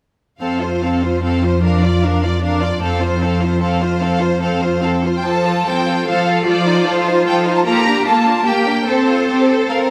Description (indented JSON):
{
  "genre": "classical",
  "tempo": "149 BPM",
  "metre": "3/4",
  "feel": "rubato",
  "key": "F major",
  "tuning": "A4 = 440 Hz",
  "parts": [
    { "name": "clear symphonic violin section", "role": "melody", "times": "0.4-9.8 s", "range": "C5 to Bb5", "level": "-23 LUFS", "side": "equal", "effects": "none" },
    { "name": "clear symphonic violin section", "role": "second line", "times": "0.4-9.9 s", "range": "Bb3 to D5", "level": "-24 LUFS", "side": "equal", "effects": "none" },
    { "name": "rich symphonic viola section", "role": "accompaniment", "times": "0.4-9.9 s", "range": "F3 to F4", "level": "-21 LUFS", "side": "equal", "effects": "none" },
    { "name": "clear symphonic cello section", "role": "bass", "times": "0.4-9.9 s", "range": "F2 to A4", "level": "-21 LUFS", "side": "equal", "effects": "none" }
  ],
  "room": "moderate scoring stage reverb, RT60 1.5 s",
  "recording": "none",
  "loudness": "-16 LUFS",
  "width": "mono",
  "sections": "0.4-5.3 A section; 5.3-9.9 B section",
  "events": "none",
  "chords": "0.4 F; 1.6 Bb/F; 2.8 F; 6.5 F7; 7.7 Bbmaj7; 8.5 Gm/Bb; 8.9 F/C",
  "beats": "| 0.41 0.82 1.22 | 1.63 2.03 2.42 | 2.82 3.21 3.61 | 4.01 4.42 4.83 | 5.26 5.67 6.07 | 6.47 6.87 7.27 | 7.66 8.06 8.46 | 8.87 9.29 9.71"
}